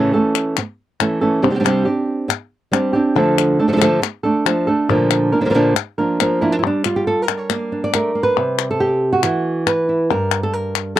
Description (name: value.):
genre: flamenco.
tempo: 138 BPM.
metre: 4/4.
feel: straight.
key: unclear.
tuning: A4 = 440 Hz.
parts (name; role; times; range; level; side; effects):
flamenco guitar; melody; 0.0-11.0 s; G2 to D5; -16 LUFS; right 1 dB; none.
palmas hand claps; percussion; 0.4-11.0 s; none; -20 LUFS; left 18 dB; none.
room: light reverb.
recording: dry, close 1970s-style studio recording.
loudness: -15 LUFS.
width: side -12 dB against mid.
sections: 0.0-6.6 A section; 6.6-11.0 B section.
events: none.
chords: 0.0 A; 1.4 Csus2; 3.2 Dm; 4.9 Bb; 6.6 Gm; 8.4 C; 10.1 N.C..